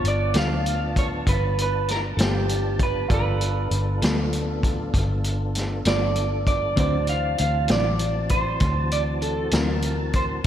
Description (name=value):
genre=slow blues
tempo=65 BPM (dotted quarters)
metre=12/8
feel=straight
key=G mixolydian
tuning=A4 = 440 Hz
part: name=electric guitar through a small old amp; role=melody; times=0.0-10.2 s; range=G4 to F5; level=-26 LUFS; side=right 2 dB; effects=lush chorus, slapback echo
part: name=warm upright piano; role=accompaniment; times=0.0-10.4 s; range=B3 to A5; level=-36 LUFS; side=right 4 dB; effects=slapback echo
part: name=tonewheel organ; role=sustained chords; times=0.0-10.5 s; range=E3 to A5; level=-32 LUFS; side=left 1 dB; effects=overdrive, chorus vibrato, slow rotary speaker
part: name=vintage muted fingered electric bass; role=bass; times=0.0-10.5 s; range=G1 to D2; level=-25 LUFS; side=equal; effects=none
part: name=vintage drum kit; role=drums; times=0.0-10.5 s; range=hi-hat, kick drum, snare drum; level=-25 LUFS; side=equal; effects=none
part: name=mellow electric guitar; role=accompaniment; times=0.3-9.7 s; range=D3 to A4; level=-33 LUFS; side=left 4 dB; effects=none
room=moderate lush hall reverb, RT60 2.9 s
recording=big arena sound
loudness=-20 LUFS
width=side -10 dB against mid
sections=0.0-10.5 A section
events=none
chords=0.0 G9; 6.8 D9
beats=0.35 1.26 2.18 | 3.10 4.02 4.94 5.86 | 6.78 7.70 8.62 9.53 | 10.45